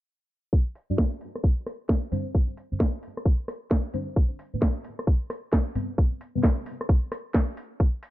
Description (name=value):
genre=UK garage, two-step garage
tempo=132 BPM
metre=4/4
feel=swing 64% on 16ths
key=unclear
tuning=A4 = 441 Hz
part: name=electronic kick drum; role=drums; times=0.5-7.9 s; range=none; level=-22 LUFS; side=equal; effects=none
part: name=garage drum kit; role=drums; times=0.8-8.1 s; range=hi-hat, rim click, snare drum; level=-28 LUFS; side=equal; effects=none
part: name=deep mellow chord stab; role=stabs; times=0.9-6.4 s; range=G3 to D5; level=-31 LUFS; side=equal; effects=chorus, phaser, tape echo
room=little or no reverb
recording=low-pass filter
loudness=-24 LUFS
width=side -16 dB against mid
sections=0.5-8.1 A section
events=filter sweep 0.5-8.1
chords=0.5 G5; 2.1 D7sus4; 4.2 Bm7; 5.8 Gadd11